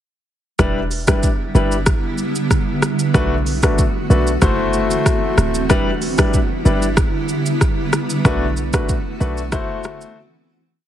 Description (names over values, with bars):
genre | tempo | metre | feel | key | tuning
afrobeats | 94 BPM | 4/4 | straight | E minor | A4 = 440 Hz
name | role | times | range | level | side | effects
warm concert grand piano | accompaniment | 0.6-10.2 s | G3 to C5 | -20 LUFS | left 3 dB | none
granular cloud pad | sustained chords | 1.4-10.8 s | D3 to F#4 | -22 LUFS | right 2 dB | built-in reverb
short 808-style bass | bass | 0.6-10.1 s | D1 to B1 | -19 LUFS | equal | none
afro-pop drum kit | drums | 0.6-10.2 s | hi-hat, kick drum, rim click, shaker | -18 LUFS | equal | vintage 12-bit sampler grit
room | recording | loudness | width
little or no reverb | heavily compressed radio sound | -15 LUFS | side -11 dB against mid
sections
0.6-10.8 chorus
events
fade-out 8.2-10.8; break 10.2-10.8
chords
0.6 Em7; 3.1 Bm7; 4.4 F#m7b5; 5.7 Em7; 8.2 Bm7; 9.5 F#m7b5